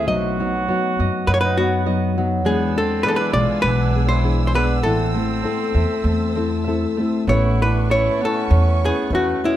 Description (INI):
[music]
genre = mexican folk, mariachi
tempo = 100 BPM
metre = 4/4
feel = rubato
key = A harmonic minor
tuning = A4 = 440 Hz
[part]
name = archtop guitar, miked and amplified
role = melody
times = 0.0-9.6 s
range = E4 to D#5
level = -21 LUFS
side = equal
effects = none
[part]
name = warm trumpet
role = second line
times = 0.0-9.6 s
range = G#3 to F#4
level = -29 LUFS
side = right 5 dB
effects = none
[part]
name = nylon-string guitar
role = accompaniment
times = 0.0-9.6 s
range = A2 to B4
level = -25 LUFS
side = left 3 dB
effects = none
[part]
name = Celtic harp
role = arpeggios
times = 0.0-9.6 s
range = F#3 to E5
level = -24 LUFS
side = equal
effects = none
[part]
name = upright bass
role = bass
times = 0.0-9.3 s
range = A1 to F#2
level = -20 LUFS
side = right 1 dB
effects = none
[part]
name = dark symphonic violin section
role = sustained chords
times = 2.5-9.6 s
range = B4 to E6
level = -33 LUFS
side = right 2 dB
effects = none
[sound]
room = light reverb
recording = none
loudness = -17 LUFS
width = side -12 dB against mid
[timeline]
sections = 0.0-7.3 A section; 7.3-9.6 B section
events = none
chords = 0.1 B; 2.5 E7; 4.8 Am; 7.3 Aadd9